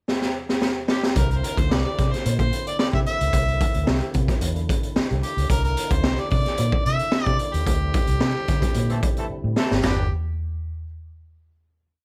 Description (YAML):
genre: funk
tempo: 111 BPM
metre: 4/4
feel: straight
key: unclear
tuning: A4 = 440 Hz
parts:
  - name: raw garage drum kit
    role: drums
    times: 0.1-10.0 s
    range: hi-hat, kick drum, snare drum, splash cymbal, toms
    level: -25 LUFS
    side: equal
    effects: none
  - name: mellow harmonica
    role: melody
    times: 0.9-10.1 s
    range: G4 to E5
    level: -30 LUFS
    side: equal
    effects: none
  - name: percussive tonewheel organ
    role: sustained chords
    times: 1.2-10.1 s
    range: D3 to G4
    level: -37 LUFS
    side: equal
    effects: overdrive, chorus vibrato, slow rotary speaker
  - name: vintage muted fingered electric bass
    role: bass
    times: 1.2-10.1 s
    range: G1 to D3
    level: -26 LUFS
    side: equal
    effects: none
  - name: clear horn section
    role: second line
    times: 8.9-10.0 s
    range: E3 to B4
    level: -34 LUFS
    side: equal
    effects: none
room: light reverb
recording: none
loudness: -23 LUFS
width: mono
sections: 0.0-1.2 pickup bar; 1.2-9.8 bridge; 9.8-12.0 final chord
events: drum fill 0.1-1.2, 9.3-9.8; band accent 7.7-9.8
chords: 0.0 N.C.; 1.2 C9; 7.7 D9sus4; 9.8 G